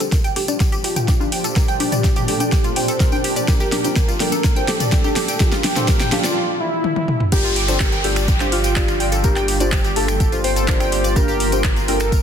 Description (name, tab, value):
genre	progressive house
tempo	125 BPM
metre	4/4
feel	straight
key	G minor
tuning	A4 = 440 Hz
part	wide unison lead	melody	0.0-12.2 s	E4 to C5	-25 LUFS	equal	cassette tape, ping-pong delay
part	shimmering ambient pad	sustained chords	0.4-12.2 s	Bb2 to G4	-28 LUFS	equal	chorus, built-in reverb, sidechain pumping
part	analog pluck	arpeggios	0.0-12.2 s	F4 to G5	-26 LUFS	right 2 dB	chorus, sidechain pumping, ping-pong delay
part	deep mellow chord stab	stabs	0.0-12.0 s	D4 to D5	-26 LUFS	left 1 dB	chorus, phaser, sidechain pumping, ping-pong delay
part	deep house drum kit	drums	0.0-12.2 s	crash cymbal, finger snaps, handclaps, hi-hat, snare drum, toms	-23 LUFS	equal	soft clipping on snare, studio reverb, sidechain pumping on hats, sidechain pumping on toms, sidechain pumping on cymbals
part	tambourine	percussion	0.0-12.2 s	none	-31 LUFS	left 5 dB	none
part	electronic kick drum	drums	0.1-12.2 s	none	-18 LUFS	equal	studio reverb
part	electronic congas and toms	percussion	0.5-6.3 s	none	-25 LUFS	left 5 dB	sidechain pumping on perc, studio reverb, sidechain pumping on toms
part	soft synth bell	second line	7.3-12.2 s	F4 to C5	-30 LUFS	left 3 dB	none
part	round analog bass	bass	7.3-12.2 s	G1	-23 LUFS	equal	sidechain pumping
part	downlifter	sound effects	7.3-11.2 s	none	-27 LUFS	equal	none
room	light reverb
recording	dense, heavily limited modern master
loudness	-16 LUFS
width	side -8 dB against mid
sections	0.0-7.3 A section; 7.3-12.2 B section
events	build-up 0.0-7.3; drum fill 0.0-6.4, 6.8-7.3; filter sweep on synth pluck 0.0-7.3; filter sweep on synth stab 0.0-7.3; filter sweep on analog synth lead 0.0-7.3; break 6.4-7.3; drop 7.3-12.2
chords	0.0 Gm7